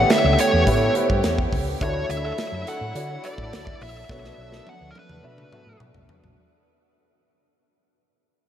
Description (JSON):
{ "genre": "polished 1980s jazz-funk pop", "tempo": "105 BPM", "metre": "4/4", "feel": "straight", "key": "B minor", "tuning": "A4 = 439 Hz", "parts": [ { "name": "nasal lead guitar with a parked wah", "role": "melody", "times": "0.0-5.8 s", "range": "A#4 to F#5", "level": "-25 LUFS", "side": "equal", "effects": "overdrive, diffuse ambient delay" }, { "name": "clear grand piano", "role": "accompaniment", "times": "0.0-6.4 s", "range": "B3 to E5", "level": "-27 LUFS", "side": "equal", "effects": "ensemble chorus" }, { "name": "warm studio string section", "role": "sustained chords", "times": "0.0-6.4 s", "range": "D3 to G4", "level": "-28 LUFS", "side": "right 1 dB", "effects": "none" }, { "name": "hollow-body short-scale fingered electric bass", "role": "bass", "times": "0.0-6.3 s", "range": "A#1 to D3", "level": "-26 LUFS", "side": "equal", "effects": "none" }, { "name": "modern studio drum kit", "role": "drums", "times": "0.1-6.4 s", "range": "hi-hat, kick drum, snare drum, toms", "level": "-25 LUFS", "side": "right 1 dB", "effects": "none" }, { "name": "mellow horn section", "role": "second line", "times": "2.2-2.8 s", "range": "A3 to A4", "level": "-43 LUFS", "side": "right 2 dB", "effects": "none" } ], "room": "wet huge ambient reverb, RT60 6.5 s", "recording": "dreamy mix soaked in reverb", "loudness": "-19 LUFS", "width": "side -10 dB against mid", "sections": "0.0-6.4 A section", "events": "fade-out 0.0-6.4; drum fill 4.1-6.4", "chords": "0.0 A7; 1.8 Dmaj9; 4.1 Bm9" }